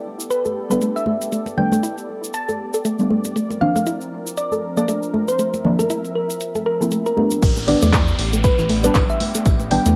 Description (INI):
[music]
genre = deep house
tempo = 118 BPM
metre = 4/4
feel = swing 58% on 16ths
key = unclear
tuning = A4 = 440 Hz
[part]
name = warm analog pad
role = sustained chords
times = 0.0-10.0 s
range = F3 to E5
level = -33 LUFS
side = equal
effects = chorus, sidechain pumping
[part]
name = tube shaker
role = percussion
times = 0.2-9.9 s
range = none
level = -34 LUFS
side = equal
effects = none
[part]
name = thumb-piano-like synth pluck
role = melody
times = 0.3-10.0 s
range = Bb4 to A5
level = -26 LUFS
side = equal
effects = chorus, analog delay
[part]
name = deep house drum kit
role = drums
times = 0.3-9.9 s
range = crash cymbal, handclaps, hi-hat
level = -30 LUFS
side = equal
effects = overdrive, low-pass filter on hats, low-pass filter on cymbals, low-pass filter on snare
[part]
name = soft round pluck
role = arpeggios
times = 0.5-9.9 s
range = E3 to A4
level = -26 LUFS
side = equal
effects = chorus, sidechain pumping, analog delay
[part]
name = congas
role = percussion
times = 0.5-9.9 s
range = none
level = -31 LUFS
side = equal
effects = sidechain pumping on perc
[part]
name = deep mellow chord stab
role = stabs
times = 0.7-9.9 s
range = F3 to E4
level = -24 LUFS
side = equal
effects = chorus, phaser, sidechain pumping, tape echo
[part]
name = round analog bass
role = bass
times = 7.4-10.0 s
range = A1 to E2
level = -23 LUFS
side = equal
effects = sidechain pumping
[part]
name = electronic kick drum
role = drums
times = 7.4-9.6 s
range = none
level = -21 LUFS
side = equal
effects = overdrive
[part]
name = soft brush drum kit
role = drums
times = 7.4-10.0 s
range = hi-hat, snare drum, tambourine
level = -37 LUFS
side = equal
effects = none
[part]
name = downlifter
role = sound effects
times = 7.4-10.0 s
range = none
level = -33 LUFS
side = equal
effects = none
[sound]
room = moderate spring reverb, RT60 1.3 s, small room ambience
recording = home recording on cassette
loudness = -20 LUFS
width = mono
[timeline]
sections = 0.0-7.4 A section; 7.4-10.0 B section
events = drop 7.4-10.0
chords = 0.0 A9sus4; 3.4 C9sus4; 7.4 A9sus4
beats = 0.31 0.81 | 1.32 1.83 2.34 2.85 | 3.36 3.87 4.37 4.88 | 5.39 5.90 6.41 6.92 | 7.42 7.93 8.44 8.95 | 9.46